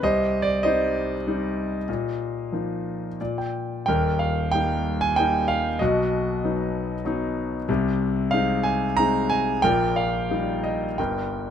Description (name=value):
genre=classical, lyrical solo piano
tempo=86-98 BPM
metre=3/4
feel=rubato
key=Eb major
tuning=A4 = 440 Hz
part: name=clear grand piano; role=solo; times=0.0-11.5 s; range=Eb1 to Bb5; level=-22 LUFS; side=equal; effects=none
room=little or no reverb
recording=close, detailed microphones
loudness=-22 LUFS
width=side -8 dB against mid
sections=0.0-3.9 A section; 3.9-11.5 A section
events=grand piano fill 2.9-3.9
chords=0.0 Cm; 1.9 Bbsus4; 3.2 N.C.; 3.9 Eb; 5.8 B; 7.7 Ab/C; 9.6 Eb/Bb; 11.0 Gm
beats=| 0.02 0.64 1.26 | 1.88 2.52 3.20 | 3.88 4.54 5.18 | 5.80 6.43 7.06 | 7.69 8.33 8.99 | 9.64 10.30 10.98